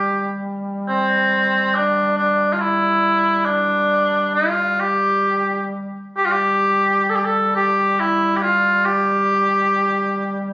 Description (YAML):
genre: caucasian folk, Caucasian lament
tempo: 68 BPM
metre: 3/4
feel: rubato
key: unclear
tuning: A4 = 442 Hz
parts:
  - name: mellow cor anglais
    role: melody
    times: 0.0-10.5 s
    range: C4 to A4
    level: -16 LUFS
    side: equal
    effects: none
  - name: mellow duduk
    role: drone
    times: 0.0-10.5 s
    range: G3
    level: -25 LUFS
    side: equal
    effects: none
room: light reverb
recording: recorded on a phone in the room, studio reverb, compression, nothing above 7.7 kHz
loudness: -16 LUFS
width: side -19 dB against mid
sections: 0.0-10.5 A section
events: none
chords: none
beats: | 0.86 1.73 2.59 | 3.46 4.35 5.26 | 6.17 7.08 7.98 | 8.86 9.73